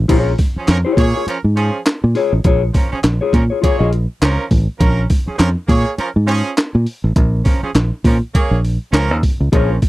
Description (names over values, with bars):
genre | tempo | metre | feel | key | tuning
funk | 102 BPM | 4/4 | swing 60% on 16ths | Bb minor | A4 = 440 Hz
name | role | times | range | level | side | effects
fingered electric bass | bass | 0.0-9.8 s | A1 to Bb2 | -15 LUFS | equal | none
clear horn section | second line | 0.1-9.8 s | F3 to Db5 | -21 LUFS | right 3 dB | none
mellow electric guitar | accompaniment | 0.1-3.9, 9.5-9.7 s | F4 to Eb5 | -18 LUFS | left 6 dB | none
breakbeat sampler-style drum kit | drums | 0.1-9.9 s | crash cymbal, handclaps, hi-hat, kick drum, snare drum | -15 LUFS | equal | none
room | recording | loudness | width
little or no reverb | dry, close 1970s-style studio recording | -13 LUFS | side -17 dB against mid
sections
0.1-9.9 A section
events
none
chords
0.1 Bbm7